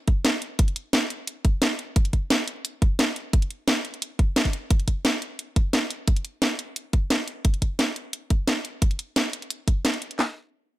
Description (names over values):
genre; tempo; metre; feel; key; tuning
drum and bass; 175 BPM; 4/4; straight; none; none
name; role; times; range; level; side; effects
garage drum kit; drums; 0.1-10.3 s; handclaps, kick drum, snare drum; -21 LUFS; equal; none
garage drum kit; drums; 0.1-10.2 s; hi-hat, snare drum; -23 LUFS; equal; none
room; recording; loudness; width
little or no reverb; none; -22 LUFS; side -16 dB against mid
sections
0.0-10.2 A section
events
none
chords
none